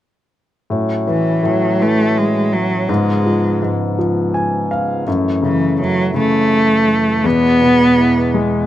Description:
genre	pop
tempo	55 BPM (dotted quarters)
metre	6/8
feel	straight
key	A major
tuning	A4 = 439 Hz
part	clear concert grand piano	accompaniment	0.7-8.7 s	E2 to G#5	-17 LUFS	left 2 dB	none
part	tonewheel organ	sustained chords	0.7-8.7 s	E2 to C#4	-23 LUFS	right 3 dB	stopped rotary speaker
part	rich cello	melody	1.1-8.7 s	E3 to B3	-15 LUFS	right 1 dB	none
room	light reverb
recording	recorded outdoors, with no room sound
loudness	-13 LUFS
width	side -13 dB against mid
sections	0.7-8.7 A section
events	grand piano fill 4.0-5.1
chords	0.7 A6; 2.9 C#7/G#; 5.1 F#m7; 7.2 E

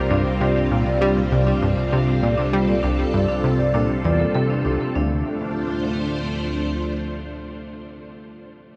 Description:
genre	ambient, sequencer-driven space music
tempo	99 BPM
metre	4/4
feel	straight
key	D minor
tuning	A4 = 440 Hz
part	string machine, full ensemble	sustained chords	0.0-8.1 s	G3 to C5	-27 LUFS	equal	ensemble chorus
part	vibraphone with medium mallets	arpeggios	0.0-5.2 s	D4 to D5	-28 LUFS	equal	tape echo
part	analog drone	bass	0.0-6.7 s	C2 to D2	-31 LUFS	equal	chorus
part	plucky analog bass	riff	0.1-5.2 s	C2 to G3	-25 LUFS	equal	tape echo
room	wet huge ambient reverb, RT60 8.1 s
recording	dark, warm production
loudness	-21 LUFS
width	mono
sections	0.0-5.0 A section; 5.0-7.4 B section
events	none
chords	0.0 C7sus4; 5.0 Dm7

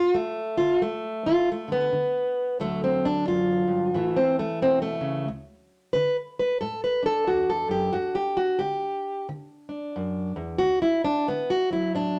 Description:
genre	acoustic country blues, solo or duo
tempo	90 BPM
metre	4/4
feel	swing 60% on 8ths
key	D major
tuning	A4 = 441 Hz
part	fingerpicked plugged-in steel-string acoustic guitar	solo	0.0-12.2 s	D2 to B4	-25 LUFS	equal	none
room	wet studio reverb, RT60 0.7 s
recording	none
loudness	-25 LUFS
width	mono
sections	0.0-5.3 A section; 5.3-12.2 B section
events	steel-string acoustic guitar solo 5.3-12.2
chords	0.0 G; 2.6 D; 3.9 A; 5.3 D; 7.9 G5; 10.6 D

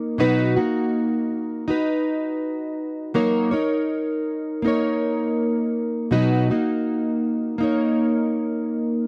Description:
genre	indie pop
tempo	81 BPM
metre	4/4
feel	swing 60% on 16ths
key	unclear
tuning	A4 = 441 Hz
part	fingerpicked plugged-in steel-string acoustic guitar	solo	0.0-9.1 s	B2 to C#5	-23 LUFS	equal	analog chorus, warbly pitch drift
room	light reverb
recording	dry, close 1970s-style studio recording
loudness	-23 LUFS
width	mono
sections	0.0-9.1 A section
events	none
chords	0.2 Bmaj7; 3.2 F#6; 6.1 Bmaj7; 7.6 A#madd11

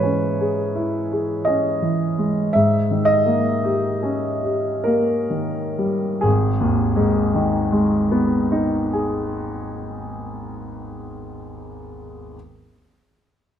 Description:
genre	classical, romantic nocturne for solo piano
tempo	41-57 BPM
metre	3/4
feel	rubato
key	G# minor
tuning	A4 = 441 Hz
part	clear concert grand piano	solo	0.0-12.4 s	G#1 to E5	-19 LUFS	equal	none
room	moderate recital hall reverb, RT60 1.5 s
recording	close, detailed microphones, lossy compression artefacts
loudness	-18 LUFS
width	side -9 dB against mid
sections	0.0-6.2 A section; 6.2-10.1 B section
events	slowing down 0.0-6.2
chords	0.0 C#m/G#; 2.5 D#7/G#; 6.2 G#m

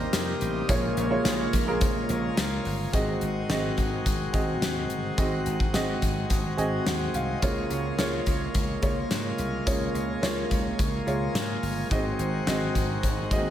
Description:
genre	1980s-style pop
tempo	107 BPM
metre	4/4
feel	straight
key	unclear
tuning	A4 = 441 Hz
part	warm grand piano	accompaniment	0.0-13.5 s	Ab2 to Ab5	-29 LUFS	right 2 dB	none
part	pipe organ, plenum	sustained chords	0.0-13.5 s	C3 to Gb4	-32 LUFS	left 2 dB	none
part	slap bass	bass	0.0-13.5 s	G1 to Ab2	-32 LUFS	equal	none
part	gated 80s drum kit	drums	0.1-13.4 s	hi-hat, kick drum, snare drum, tambourine	-29 LUFS	equal	none
part	cowbell	percussion	0.1-2.5, 11.9-13.4 s	none	-45 LUFS	left 5 dB	none
room	moderate cathedral reverb, RT60 4.9 s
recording	dreamy mix soaked in reverb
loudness	-24 LUFS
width	side -11 dB against mid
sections	0.0-2.9 A section; 2.9-13.5 B section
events	grand piano fill 6.3-7.4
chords	0.0 Cm7; 0.7 Bbm7; 2.9 Ab7; 7.4 Db6; 11.9 Ab7

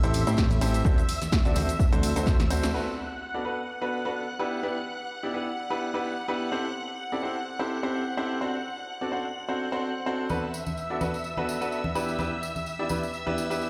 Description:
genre	piano house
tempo	127 BPM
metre	4/4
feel	swing 55% on 16ths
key	unclear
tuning	A4 = 439 Hz
part	string machine, violins	sustained chords	0.0-13.7 s	E5 to F#6	-37 LUFS	equal	ensemble chorus, sidechain pumping
part	bright grand piano	riff	0.0-13.7 s	B3 to D5	-32 LUFS	equal	sidechain pumping, delay
part	fat analog bass	bass	0.0-2.7 s	A1 to A2	-29 LUFS	equal	sidechain pumping
part	punchy analog drum machine	drums	0.0-2.7 s	cabasa, hi-hat, snare drum	-35 LUFS	equal	low-pass filter on perc, low-pass filter on snare, low-pass filter on hats, low-pass filter on room
part	congas and tambourine	percussion	0.0-2.7, 10.3-13.7 s	none	-37 LUFS	equal	none
part	electronic kick drum	drums	0.4-2.4 s	none	-27 LUFS	equal	none
room	moderate lush hall reverb, RT60 2.1 s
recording	played on a big sound system in a bare room, large studio reverb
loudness	-28 LUFS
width	mono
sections	0.0-2.7 A section; 2.7-13.7 B section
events	drum fill 2.3-2.7; band accent 2.6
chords	0.0 Am7; 0.9 D7; 2.7 Bm7; 4.4 Em7; 6.5 Am7; 8.4 D7; 10.3 Bm7; 12.0 Em7

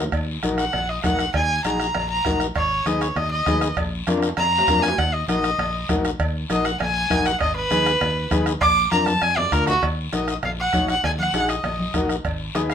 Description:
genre	latin, cumbia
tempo	198 BPM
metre	4/4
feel	straight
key	Eb minor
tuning	A4 = 440 Hz
part	overdriven combo organ	accompaniment	0.0-12.7 s	D4 to Db5	-25 LUFS	left 3 dB	none
part	fingered electric bass	bass	0.0-12.7 s	Ab1 to F2	-28 LUFS	equal	none
part	bombo	percussion	0.1-12.7 s	none	-28 LUFS	right 2 dB	none
part	congas	percussion	0.1-12.7 s	none	-31 LUFS	left 2 dB	none
part	cowbell and timbales	percussion	0.1-12.7 s	none	-32 LUFS	right 4 dB	none
part	guiro	percussion	0.1-12.7 s	none	-34 LUFS	left 6 dB	none
part	rich erhu	melody	0.6-12.7 s	Gb4 to D6	-21 LUFS	equal	none
room	moderate studio reverb, RT60 0.6 s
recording	minimal, uncompressed stereo recording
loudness	-19 LUFS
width	side -8 dB against mid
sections	0.1-9.8 A section; 9.8-12.7 B section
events	erhu solo 0.1-9.8; drum fill 4.1-5.0, 9.1-9.8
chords	0.1 Ebm; 2.6 Abm; 3.8 Bb; 5.0 Ebm; 7.4 Abm; 8.6 Bb; 9.8 Ebm

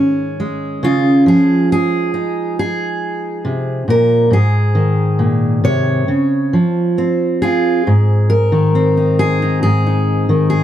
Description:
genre	folk, solo fingerstyle acoustic guitar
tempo	68 BPM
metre	4/4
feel	straight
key	Db major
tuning	A4 = 440 Hz
part	fingerpicked steel-string acoustic guitar	solo	0.0-10.6 s	Ab2 to Db5	-12 LUFS	equal	none
room	light reverb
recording	dry, close 1970s-style studio recording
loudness	-12 LUFS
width	side -11 dB against mid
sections	0.0-7.9 A section; 7.9-10.6 B section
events	none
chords	0.0 Absus4; 0.8 Dbadd9; 4.3 Ab5; 6.1 Dbmaj7; 7.9 Ab

